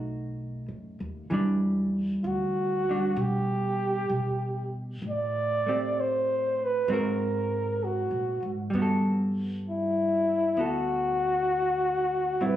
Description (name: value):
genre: jazz ballad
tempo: 65 BPM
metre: 4/4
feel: swing 69% on 8ths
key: G major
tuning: A4 = 440 Hz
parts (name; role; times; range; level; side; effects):
- hollow-body jazz guitar; accompaniment; 0.0-12.6 s; E3 to Bb4; -30 LUFS; right 1 dB; none
- upright bass; bass; 0.0-12.6 s; A1 to B2; -35 LUFS; equal; none
- breathy flugelhorn; melody; 2.2-12.6 s; E4 to D5; -26 LUFS; equal; plate reverb
room: light reverb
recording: recorded on a phone in the room, club reverb, compression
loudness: -25 LUFS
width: side -12 dB against mid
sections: 0.0-12.6 A section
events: none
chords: 0.0 B7; 1.3 Em9; 5.0 Am7; 6.9 Ab9; 8.7 Gmaj9